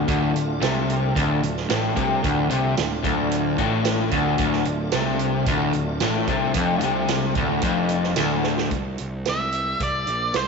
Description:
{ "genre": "classic rock", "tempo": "111 BPM", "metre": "4/4", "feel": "straight", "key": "D minor", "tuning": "A4 = 441 Hz", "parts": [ { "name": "tonewheel organ", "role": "sustained chords", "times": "0.0-8.7 s", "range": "A3 to F4", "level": "-31 LUFS", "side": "equal", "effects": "slow rotary speaker, overdrive, chorus vibrato" }, { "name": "crunchy overdriven guitar", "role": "riff", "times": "0.0-8.7 s", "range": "D2 to C3", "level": "-23 LUFS", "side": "left 9 dB", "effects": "none" }, { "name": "crunchy overdriven guitar", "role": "riff", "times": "0.0-8.7 s", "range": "D2 to C3", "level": "-26 LUFS", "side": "right 10 dB", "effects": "none" }, { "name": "fuzz picked electric bass", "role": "bass", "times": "0.0-10.5 s", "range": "D1 to C2", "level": "-30 LUFS", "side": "right 1 dB", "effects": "overdrive" }, { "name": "vintage drum kit", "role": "drums", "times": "0.1-10.5 s", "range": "hi-hat, kick drum, snare drum, tambourine", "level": "-28 LUFS", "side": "right 5 dB", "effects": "none" }, { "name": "octave-fuzz lead guitar", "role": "melody", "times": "9.3-10.5 s", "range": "C5 to E5", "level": "-23 LUFS", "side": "right 1 dB", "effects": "distortion" } ], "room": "wet echo chamber reverb, RT60 2.1 s", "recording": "1960s-style stereo with parts hard left and right, nothing above 7.8 kHz", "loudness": "-20 LUFS", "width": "side -4 dB against mid", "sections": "0.0-8.7 A section; 8.7-10.5 B section", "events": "drum fill 8.4", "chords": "0.0 Dm; 8.7 C" }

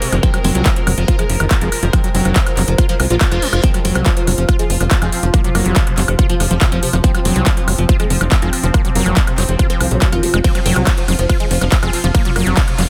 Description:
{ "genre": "psychedelic trance", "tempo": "141 BPM", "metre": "4/4", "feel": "straight", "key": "F phrygian", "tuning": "A4 = 440 Hz", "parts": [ { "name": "oud", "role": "melody", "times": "0.0-12.7 s", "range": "C3 to F4", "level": "-26 LUFS", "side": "equal", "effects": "phaser, sidechain pumping, dub echo" }, { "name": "metallic wobble bass", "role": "second line", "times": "0.0-0.2, 5.0-6.8, 11.8-12.7 s", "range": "F3 to C4", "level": "-36 LUFS", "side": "equal", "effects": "none" }, { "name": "bubbling stepped-filter texture", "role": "sustained chords", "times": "0.0-12.9 s", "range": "F3 to Bb4", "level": "-28 LUFS", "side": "equal", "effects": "chorus, built-in reverb, sidechain pumping" }, { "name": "big-room dance drum kit", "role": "drums", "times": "0.0-12.9 s", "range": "handclaps, hi-hat, ride cymbal, woodblock", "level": "-23 LUFS", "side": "equal", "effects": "none" }, { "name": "overdriven acid bass", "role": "riff", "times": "0.1-12.8 s", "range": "Eb3 to F4", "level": "-24 LUFS", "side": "equal", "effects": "distortion, cassette tape, sidechain pumping, delay" }, { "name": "tight sequencer bass", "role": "bass", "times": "0.1-12.9 s", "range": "F1 to C2", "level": "-19 LUFS", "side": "equal", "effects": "none" }, { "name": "electronic kick drum", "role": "drums", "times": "0.2-12.7 s", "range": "none", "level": "-17 LUFS", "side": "equal", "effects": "none" }, { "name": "reverse cymbal", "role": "sound effects", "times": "3.3-3.6 s", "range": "none", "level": "-30 LUFS", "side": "equal", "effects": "none" } ], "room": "little or no reverb", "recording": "dense, heavily limited modern master", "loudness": "-15 LUFS", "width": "mono", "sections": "0.0-12.9 A section", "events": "reverse cymbal 3.3-3.6", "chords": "0.0 F5" }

